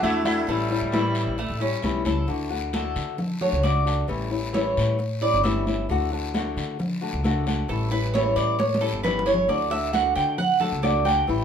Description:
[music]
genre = latin, Cuban son and guajira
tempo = 133 BPM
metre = 4/4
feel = straight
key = D major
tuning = A4 = 440 Hz
[part]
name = sitar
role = melody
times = 0.0-1.8 s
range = E4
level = -29 LUFS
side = right 2 dB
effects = none
[part]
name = clear trumpet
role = second line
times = 0.0-1.8 s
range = G3 to A3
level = -32 LUFS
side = left 3 dB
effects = none
[part]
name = flamenco guitar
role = accompaniment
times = 0.0-11.4 s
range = D3 to F#4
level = -28 LUFS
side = left 6 dB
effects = none
[part]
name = Cuban tres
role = arpeggios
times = 0.0-11.4 s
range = A3 to G5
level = -24 LUFS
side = right 2 dB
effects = none
[part]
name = upright bass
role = bass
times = 0.0-11.4 s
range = G1 to D3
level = -28 LUFS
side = equal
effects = none
[part]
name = congas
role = percussion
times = 0.0-11.4 s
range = none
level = -30 LUFS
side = right 1 dB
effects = none
[part]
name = guiro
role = percussion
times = 0.0-11.4 s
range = none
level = -38 LUFS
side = left 4 dB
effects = none
[sound]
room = moderate studio reverb, RT60 0.7 s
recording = minimal, uncompressed stereo recording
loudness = -21 LUFS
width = side -8 dB against mid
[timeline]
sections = 0.0-2.3 A section; 2.3-11.4 B section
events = Cuban tres solo 2.3-11.4; drum fill 8.6-9.5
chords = 0.5 A7; 2.3 D; 4.1 A7; 5.9 D; 7.7 A7; 9.5 D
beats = 0.03 | 0.48 0.93 1.38 1.83 | 2.28 2.73 3.19 3.64 | 4.09 4.54 4.99 5.44 | 5.89 6.34 6.79 7.24 | 7.69 8.14 8.59 9.04 | 9.49 9.94 10.38 10.83 | 11.28

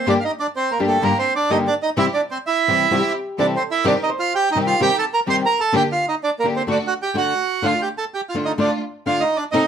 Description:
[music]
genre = tango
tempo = 127 BPM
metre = 4/4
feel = rubato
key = G minor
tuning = A4 = 442 Hz
[part]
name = bandoneon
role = melody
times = 0.0-9.7 s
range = A3 to C6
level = -19 LUFS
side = right 4 dB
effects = none
[part]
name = hollow-body jazz guitar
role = second line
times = 0.0, 2.9-4.4 s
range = G4 to C5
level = -28 LUFS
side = equal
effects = none
[part]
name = flamenco guitar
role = accompaniment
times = 0.1-9.6 s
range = G2 to A4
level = -21 LUFS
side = left 3 dB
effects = none
[part]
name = rich studio string section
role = stabs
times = 0.1-9.7 s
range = C3 to G4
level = -27 LUFS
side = equal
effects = none
[sound]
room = light reverb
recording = close, detailed microphones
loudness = -17 LUFS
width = side -8 dB against mid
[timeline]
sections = 0.1-9.7 A section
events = none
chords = 0.1 Gm; 2.0 C; 3.9 Cm; 5.7 Gm/D; 6.7 D; 7.6 Dm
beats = | 0.07 0.55 1.03 1.51 | 1.98 2.45 2.92 3.39 | 3.86 4.33 4.80 5.27 | 5.74 6.21 6.69 7.16 | 7.64 8.12 8.59 9.06 | 9.54

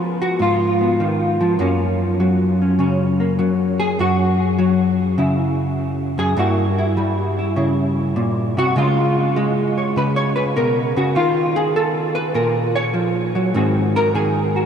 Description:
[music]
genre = solo jazz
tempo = 100 BPM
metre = 4/4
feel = swing 68% on 8ths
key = unclear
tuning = A4 = 440 Hz
[part]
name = hollow-body jazz guitar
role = solo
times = 0.0-14.7 s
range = Gb2 to Db5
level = -16 LUFS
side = equal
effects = ensemble chorus, analog delay
[sound]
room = wet huge ambient reverb, RT60 8.3 s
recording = dreamy mix soaked in reverb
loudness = -16 LUFS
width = side -8 dB against mid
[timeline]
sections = 0.0-14.7 A section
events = hollow-body jazz guitar solo 0.0-14.7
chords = 0.0 Db7 (rootless); 1.6 Gb7; 6.4 Gdim7; 8.8 Db7; 11.1 Eb5; 13.5 Ab7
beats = 0.40 0.99 | 1.59 2.19 2.78 3.38 | 3.98 4.57 5.17 5.77 | 6.36 6.96 7.56 8.15 | 8.75 9.35 9.94 10.54 | 11.14 11.73 12.33 12.93 | 13.53 14.12

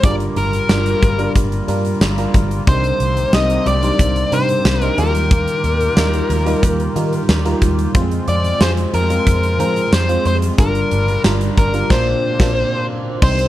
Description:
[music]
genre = 1980s-style pop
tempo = 91 BPM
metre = 4/4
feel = straight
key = unclear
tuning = A4 = 439 Hz
[part]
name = dark smooth lead guitar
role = melody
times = 0.0-13.5 s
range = Bb4 to Eb5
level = -20 LUFS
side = left 2 dB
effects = overdrive, slapback echo
[part]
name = soft synth bell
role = second line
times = 0.0-13.5 s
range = Bb5 to Eb6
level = -29 LUFS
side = right 5 dB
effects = chorus, slapback echo
[part]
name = FM electric piano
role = accompaniment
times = 0.0-13.5 s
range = G2 to C5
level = -21 LUFS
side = right 1 dB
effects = chorus, phaser
[part]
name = hand-pumped harmonium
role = sustained chords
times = 0.0-13.5 s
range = C3 to Bb4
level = -27 LUFS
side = left 3 dB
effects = none
[part]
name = vintage muted picked electric bass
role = bass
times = 0.0-13.5 s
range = G1 to F3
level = -19 LUFS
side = equal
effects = none
[part]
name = huge arena drum kit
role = drums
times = 0.0-13.5 s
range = crash cymbal, hi-hat, kick drum, snare drum, tambourine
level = -18 LUFS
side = equal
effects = none
[sound]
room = little or no reverb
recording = none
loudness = -14 LUFS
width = side -14 dB against mid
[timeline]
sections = 0.0-13.2 A section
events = band accent 11.9-13.2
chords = 0.0 Gm7; 2.7 Cmadd9; 5.0 Ebadd9; 7.9 Fm; 10.6 Gm7; 11.9 Bbadd9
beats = | 0.04 0.69 1.35 2.01 | 2.67 3.33 3.99 4.65 | 5.31 5.97 6.63 7.29 | 7.95 8.61 9.27 9.93 | 10.58 11.24 11.90 12.56 | 13.22

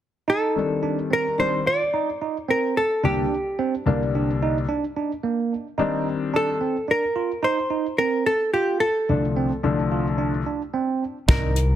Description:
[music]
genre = progressive instrumental, band music in an uneven meter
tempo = 109 BPM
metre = 5/4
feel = straight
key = C dorian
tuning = A4 = 440 Hz
[part]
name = hollow-body jazz guitar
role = melody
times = 0.3-11.8 s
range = G4 to D5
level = -22 LUFS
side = equal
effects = plate reverb
[part]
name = overdriven tine electric piano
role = arpeggios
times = 0.3-11.6 s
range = Bb3 to F4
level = -26 LUFS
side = right 6 dB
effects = phaser, plate reverb, digital delay
[part]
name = warm grand piano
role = accompaniment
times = 0.6-11.5 s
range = C2 to D4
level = -24 LUFS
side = left 4 dB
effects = none
[part]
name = growling fingered electric bass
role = bass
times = 11.3-11.7 s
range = C2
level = -20 LUFS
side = equal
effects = overdrive
[part]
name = soft brush drum kit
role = drums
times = 11.3-11.7 s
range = hi-hat, kick drum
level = -20 LUFS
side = equal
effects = none
[sound]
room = moderate studio reverb, RT60 0.8 s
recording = dense, heavily limited modern master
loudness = -21 LUFS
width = side -11 dB against mid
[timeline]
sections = 0.3-11.8 A section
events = none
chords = 0.3 Cmadd9; 3.0 Gm/C; 5.8 Cmadd9; 8.5 Dm/C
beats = | 0.28 0.83 1.39 1.94 2.49 | 3.04 3.59 4.14 4.69 5.24 | 5.79 6.34 6.89 7.44 7.99 | 8.54 9.09 9.64 10.19 10.74 | 11.29

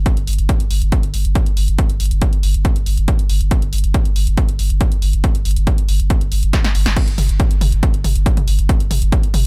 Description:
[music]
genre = driving peak-time techno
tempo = 139 BPM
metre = 4/4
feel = straight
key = unclear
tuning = A4 = 440 Hz
[part]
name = warm sub bass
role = bass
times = 0.0-9.4 s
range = G1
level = -20 LUFS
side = equal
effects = overdrive, sidechain pumping, low-pass filter
[part]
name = electronic kick drum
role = drums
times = 0.1-9.2 s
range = none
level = -19 LUFS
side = equal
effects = none
[part]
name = punchy analog drum machine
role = drums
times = 0.1-9.4 s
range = crash cymbal, hi-hat, snare drum, toms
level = -27 LUFS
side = equal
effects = overdrive, sidechain pumping on hats, sidechain pumping on cymbals, sidechain pumping on toms
[sound]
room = digital ambience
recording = none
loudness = -16 LUFS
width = mono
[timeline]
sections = 0.0-7.0 A section; 7.0-9.5 B section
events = drum fill 6.5-7.0; drop 7.0-9.5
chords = none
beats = | 0.06 0.49 0.92 1.35 | 1.78 2.22 2.65 3.08 | 3.51 3.94 4.38 4.81 | 5.24 5.67 6.10 6.53 | 6.96 7.40 7.83 8.26 | 8.69 9.12

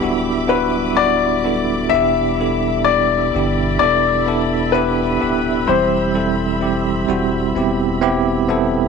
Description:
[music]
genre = pop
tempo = 64 BPM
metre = 4/4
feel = straight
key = unclear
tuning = A4 = 439 Hz
[part]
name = bell-like tine electric piano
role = accompaniment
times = 0.0-8.9 s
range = B2 to A4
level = -18 LUFS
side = right 3 dB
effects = fast stereo tremolo
[part]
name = rich studio string section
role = sustained chords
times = 0.0-8.9 s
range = G3 to D6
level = -27 LUFS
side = right 2 dB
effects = none
[part]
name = warm sub bass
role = bass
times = 0.0-8.9 s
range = D1 to G1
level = -26 LUFS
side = right 3 dB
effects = none
[part]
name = clear grand piano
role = melody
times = 0.5-7.5 s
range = B4 to E5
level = -18 LUFS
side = left 10 dB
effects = tape echo
[sound]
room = light reverb, small room reverb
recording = none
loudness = -15 LUFS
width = side -5 dB against mid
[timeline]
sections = 0.0-8.9 A section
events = none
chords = 0.0 G6/D; 1.9 Em7; 5.7 Cmaj7/E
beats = 0.03 0.98 | 1.93 2.88 3.82 4.75 | 5.69 6.62 7.56 8.49

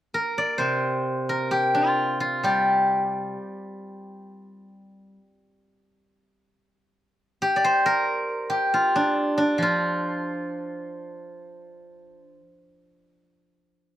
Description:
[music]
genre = chinese traditional, Chinese solo plucked strings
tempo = 60-69 BPM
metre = 4/4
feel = rubato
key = unclear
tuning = A4 = 440 Hz
[part]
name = steel-string zither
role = solo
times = 0.1-12.4 s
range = C3 to D5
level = -22 LUFS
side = equal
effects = none
[sound]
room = little or no reverb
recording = recorded outdoors, with no room sound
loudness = -21 LUFS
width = side -12 dB against mid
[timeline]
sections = 0.0-14.0 A section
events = none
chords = none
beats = 0.60 1.53 | 2.44 3.35 4.27 5.17 | 6.06 6.95 7.82 8.69 | 9.59 10.49 11.41

